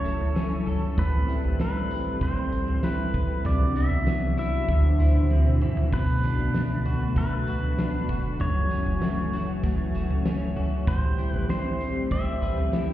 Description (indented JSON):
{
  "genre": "dream pop",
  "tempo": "97 BPM",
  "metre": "4/4",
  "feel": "straight",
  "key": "unclear",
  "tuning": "A4 = 443 Hz",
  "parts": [
    { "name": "pedal steel guitar", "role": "melody", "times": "0.0-12.9 s", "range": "B4 to E5", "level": "-32 LUFS", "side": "equal", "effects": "ping-pong delay" },
    { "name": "warm analog pad", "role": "sustained chords", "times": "0.0-12.9 s", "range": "D3 to C5", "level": "-32 LUFS", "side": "equal", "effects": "chorus" },
    { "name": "electric guitar at the edge of break-up", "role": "arpeggios", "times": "0.0-12.9 s", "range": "F#2 to B4", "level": "-30 LUFS", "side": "left 2 dB", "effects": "ensemble chorus, ping-pong delay" },
    { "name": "round analog bass", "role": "bass", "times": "0.0-12.9 s", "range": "E1 to D2", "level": "-27 LUFS", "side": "equal", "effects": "none" },
    { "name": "huge arena drum kit", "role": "drums", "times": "0.1-12.9 s", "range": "crash cymbal, kick drum, snare drum, tambourine, toms", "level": "-27 LUFS", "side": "right 1 dB", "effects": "none" }
  ],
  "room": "moderate concert hall reverb, RT60 1.9 s, small room ambience",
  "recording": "heard muffled through a wall, stone room reverb, EQ",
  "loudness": "-22 LUFS",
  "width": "side -13 dB against mid",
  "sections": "0.0-5.9 A section; 5.9-12.9 B section",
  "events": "drum fill 5.3-5.9",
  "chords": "0.0 F#m7; 1.0 Am9; 3.5 Cmaj9#11; 4.7 D9; 5.9 Bm7; 8.4 F#m7; 10.9 Am9"
}